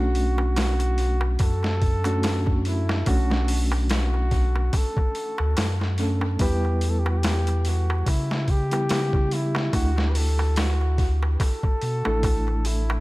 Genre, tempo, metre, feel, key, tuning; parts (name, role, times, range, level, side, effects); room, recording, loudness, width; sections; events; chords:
trip hop; 72 BPM; 4/4; swing 56% on 16ths; B minor; A4 = 440 Hz
trumpet with bucket mute; melody; 0.0-13.0 s; E4 to B4; -30 LUFS; equal; tape echo
reed electric piano; accompaniment; 0.0-13.0 s; G3 to B4; -30 LUFS; right 1 dB; fast tremolo, harmonic tremolo, vintage 12-bit sampler grit, low-pass filter, tape echo
warm sub bass; bass; 0.0-13.0 s; A1 to C#3; -23 LUFS; equal
boom bap sampler-style drum kit; drums; 0.1-12.9 s; hi-hat, kick drum, snare drum; -26 LUFS; equal; overdrive, tape echo
darbuka; percussion; 0.4-13.0 s; -35 LUFS; right 1 dB; tape echo
little or no reverb; echo-heavy mix, vinyl crackle; -21 LUFS; side -20 dB against mid
0.0-13.0 A section
filter sweep on reed electric piano 0.0-13.0
0.0 Bm7; 6.4 Em; 9.7 Dadd9